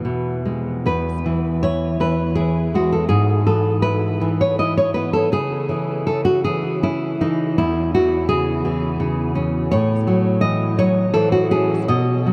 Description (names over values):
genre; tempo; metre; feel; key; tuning
romantic piece for solo classical guitar; 81 BPM; 3/4; uneven beats, rubato; E major; A4 = 440 Hz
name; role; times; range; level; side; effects
nylon-string guitar; solo; 0.0-12.3 s; E2 to D#5; -19 LUFS; equal; analog delay
room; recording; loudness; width
wet huge ambient reverb, RT60 8.4 s; dreamy mix soaked in reverb; -19 LUFS; mono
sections
0.9-12.3 A section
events
none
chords
0.0 E; 3.1 E/G#; 5.3 C#m; 7.6 C#m/E; 9.7 F#m7/A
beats
0.04 | 0.86 1.62 2.37 | 3.12 3.85 4.60 | 5.34 6.09 6.84 | 7.59 8.31 9.03 | 9.74 10.45 11.16 | 11.91